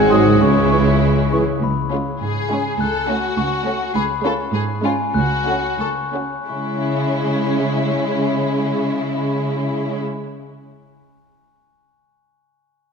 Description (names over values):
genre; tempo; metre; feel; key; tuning
cinematic, playful, whimsical film cue; 86-104 BPM; 2/4; straight; C# minor; A4 = 441 Hz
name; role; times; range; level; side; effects
glockenspiel with rubber mallets; melody; 0.0-10.5 s; G#5 to F#6; -26 LUFS; left 5 dB; none
rich studio violin section; melody; 0.0-10.0 s; E4 to A4; -25 LUFS; left 4 dB; none
warm oboe; second line; 0.0-1.0 s; C#5 to G#5; -23 LUFS; equal; none
warm studio violin section; second line; 0.0-10.0 s; B#3 to C#5; -26 LUFS; left 2 dB; none
rich studio viola section; accompaniment; 0.0-10.0 s; G#3 to C#4; -24 LUFS; right 4 dB; none
dark French horn section; sustained chords; 0.0-1.0 s; C#4 to D#4; -21 LUFS; left 6 dB; none
concert harp; arpeggios; 0.0-4.3 s; G#2 to C#5; -25 LUFS; left 8 dB; none
clear tuba; bass; 0.0-1.4 s; G#1 to C#2; -25 LUFS; right 5 dB; none
rich studio cello section; bass; 0.0-10.0 s; C#2 to C#3; -23 LUFS; right 2 dB; none
rich studio double bass section; bass; 0.0-1.4 s; G#1 to C#2; -24 LUFS; right 5 dB; none
bright silver concert flute; second line; 0.1-1.4 s; B#5 to C#6; -29 LUFS; equal; none
warm clarinet; second line; 0.1-1.4 s; G#4; -29 LUFS; left 1 dB; none
dark bassoon; accompaniment; 0.1-1.4 s; E3 to F#3; -25 LUFS; right 2 dB; none
room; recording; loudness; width
wet scoring stage reverb, RT60 1.9 s; none; -17 LUFS; side -5 dB against mid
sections
0.0-1.6 A section; 1.6-6.5 B section; 6.5-9.2 C section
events
slowing down 3.4-6.5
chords
0.4 C#m; 1.6 C#7; 2.8 F#m/C#; 4.0 C#7; 5.2 F#m/C#; 6.5 C#m